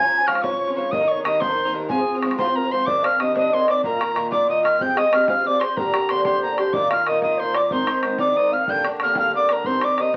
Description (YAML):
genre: celtic folk, Celtic jig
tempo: 124 BPM (dotted quarters)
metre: 6/8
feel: straight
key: C minor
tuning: A4 = 439 Hz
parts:
  - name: bright wooden whistle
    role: melody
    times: 0.0-10.2 s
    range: Ab5 to Ab6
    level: -25 LUFS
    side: equal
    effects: none
  - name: mellow baroque flute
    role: second line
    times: 0.0-10.2 s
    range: Ab4 to Bb5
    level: -24 LUFS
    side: equal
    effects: none
  - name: Irish bouzouki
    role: accompaniment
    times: 0.0-10.2 s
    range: G2 to Ab4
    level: -27 LUFS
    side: equal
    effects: none
  - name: bodhran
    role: percussion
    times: 0.3-10.2 s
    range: none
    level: -31 LUFS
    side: equal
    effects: none
room: wet club reverb, RT60 0.5 s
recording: very old 78 rpm record, vinyl crackle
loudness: -20 LUFS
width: mono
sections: 0.0-2.9 A section; 2.9-10.2 B section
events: none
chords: 0.0 Db; 0.9 Eb; 1.9 Fm; 2.9 Cmadd9; 3.8 Bbsus4; 4.8 Fmadd9; 5.8 Gm; 6.8 Bbsus4; 7.7 Ab; 8.7 Gm; 9.7 Cm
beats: 0.44 | 0.93 1.41 | 1.90 2.38 | 2.87 3.36 | 3.84 4.33 | 4.81 5.30 | 5.78 6.27 | 6.75 7.24 | 7.72 8.20 | 8.69 9.17 | 9.65 10.14